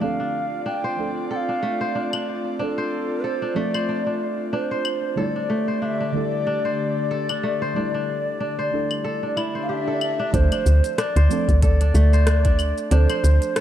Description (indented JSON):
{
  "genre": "organic downtempo",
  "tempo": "93 BPM",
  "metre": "4/4",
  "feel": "swing 57% on 16ths",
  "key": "D minor",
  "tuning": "A4 = 440 Hz",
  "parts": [
    { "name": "mellow hollow Native American-style cedar flute", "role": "melody", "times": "0.0-13.6 s", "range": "A4 to G5", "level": "-26 LUFS", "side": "left 1 dB", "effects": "tape echo" },
    { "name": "deep mellow chord stab", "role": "accompaniment", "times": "0.0-13.6 s", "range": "D3 to A4", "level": "-30 LUFS", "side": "right 3 dB", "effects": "chorus, sidechain pumping, tape echo" },
    { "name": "airy breathy pad", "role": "sustained chords", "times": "0.0-10.3 s", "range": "D3 to D5", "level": "-30 LUFS", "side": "equal", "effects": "chorus, sidechain pumping" },
    { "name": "kora", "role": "arpeggios", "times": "0.0-13.6 s", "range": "A3 to C5", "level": "-28 LUFS", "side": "equal", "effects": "low-pass filter, tape echo" },
    { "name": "organic electronic drum kit", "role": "drums", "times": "2.1-13.6 s", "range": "claves, hi-hat, rim click, shaker", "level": "-28 LUFS", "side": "left 2 dB", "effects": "overdrive, small room ambience" },
    { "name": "swell", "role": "sound effects", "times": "9.3-10.3 s", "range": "none", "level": "-31 LUFS", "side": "left 1 dB", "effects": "none" },
    { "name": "woody FM bass", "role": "bass", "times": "10.3-13.4 s", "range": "D2", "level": "-16 LUFS", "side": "equal", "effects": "sidechain pumping" },
    { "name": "electronic kick drum", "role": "drums", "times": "10.3-12.6 s", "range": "none", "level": "-21 LUFS", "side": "equal", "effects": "overdrive, small room ambience" }
  ],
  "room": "moderate echo chamber reverb, RT60 2.2 s",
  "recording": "dark, warm production",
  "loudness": "-20 LUFS",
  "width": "side -11 dB against mid",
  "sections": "0.0-10.3 A section; 10.3-13.6 B section",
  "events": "swell 9.3-10.3",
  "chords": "0.0 Dm7; 5.2 A7sus4/D; 10.3 Dm7",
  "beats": "| 0.01 0.66 1.30 1.95 | 2.60 3.24 3.88 4.53 | 5.18 5.82 6.47 7.11 | 7.76 8.40 9.05 9.69 | 10.34 10.98 11.63 12.27 | 12.92 13.56"
}